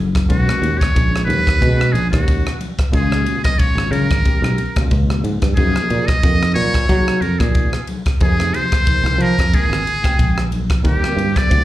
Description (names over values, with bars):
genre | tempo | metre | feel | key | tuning
electric jazz fusion | 91 BPM | 4/4 | swing 55% on 16ths | unclear | A4 = 442 Hz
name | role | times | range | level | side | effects
tine electric piano | accompaniment | 0.0-11.6 s | A#2 to G5 | -24 LUFS | right 1 dB | medium stereo tremolo, ensemble chorus
fretless electric bass | bass | 0.0-11.6 s | Gb1 to Gb3 | -18 LUFS | equal | none
crisp fusion drum kit | drums | 0.1-11.6 s | kick drum, ride cymbal, rim click | -18 LUFS | equal | none
trumpet with metal mute | melody | 0.3-11.6 s | F#4 to Eb5 | -20 LUFS | equal | slapback echo
congas | percussion | 0.5-11.5 s | none | -28 LUFS | left 4 dB | slapback echo
room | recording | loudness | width
little or no reverb | live gig heard through the venue's PA, club reverb | -14 LUFS | side -15 dB against mid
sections
0.0-11.6 A section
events
none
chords
0.3 Bmaj13; 2.9 Db; 5.6 Gbmaj9; 8.2 Fm7; 9.5 Bb13; 10.8 Ebmaj13